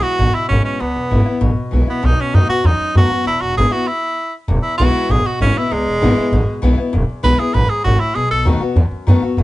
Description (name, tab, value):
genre	rockabilly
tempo	196 BPM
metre	4/4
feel	straight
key	E major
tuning	A4 = 440 Hz
part	bright tenor saxophone	melody	0.0-8.5 s	G#3 to B4	-18 LUFS	right 1 dB	none
part	picked acoustic archtop guitar	accompaniment	0.0-9.4 s	E2 to F#4	-21 LUFS	left 3 dB	none
part	upright bass	bass	0.0-9.4 s	E1 to F#2	-15 LUFS	equal	none
room	light reverb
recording	band playing live in one room, nothing above 10.3 kHz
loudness	-13 LUFS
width	side -17 dB against mid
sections	0.0-4.5 A section; 4.5-9.4 B section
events	stop 3.9-4.5; tenor saxophone solo 4.5-9.4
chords	0.0 E; 2.0 B7; 3.3 E; 8.2 B7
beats	0.19 0.50 | 0.81 1.11 1.42 1.73 | 2.03 2.34 2.65 2.96 | 3.26 3.57 3.88 4.18 | 4.49 4.80 5.10 5.41 | 5.72 6.02 6.33 6.63 | 6.94 7.25 7.55 7.86 | 8.16 8.47 8.77 9.08 | 9.38